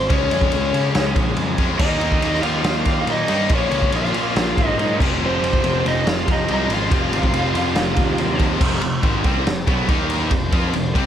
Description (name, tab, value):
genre	hard rock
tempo	141 BPM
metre	4/4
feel	straight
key	F minor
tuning	A4 = 440 Hz
part	lead guitar through a small cranked amp	melody	0.0-8.4 s	C5 to F5	-24 LUFS	left 1 dB	overdrive, slapback echo
part	nasal lead guitar with a parked wah	second line	0.0-8.4 s	C4 to F4	-29 LUFS	right 3 dB	overdrive
part	overdriven tonewheel organ	sustained chords	0.0-11.1 s	F3 to G5	-36 LUFS	equal	none
part	fuzz picked electric bass	bass	0.0-11.1 s	F1 to Db3	-24 LUFS	equal	overdrive
part	cranked stack guitar	riff	0.1-11.1 s	F2 to F4	-25 LUFS	left 10 dB	overdrive
part	overdriven electric guitar	riff	0.1-11.1 s	F2 to F4	-27 LUFS	right 12 dB	none
part	raw garage drum kit	drums	0.1-11.1 s	crash cymbal, kick drum, ride cymbal, snare drum	-21 LUFS	equal	none
part	heavy high-gain guitar	riff	1.8-11.1 s	F2 to F4	-28 LUFS	right 1 dB	distortion
room	light reverb, small room ambience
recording	none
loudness	-16 LUFS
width	side -10 dB against mid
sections	0.0-8.6 A section; 8.6-11.1 B section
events	none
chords	0.1 Db; 1.8 Eb; 3.5 Bbm; 5.0 Fm; 9.9 Eb5; 10.3 F5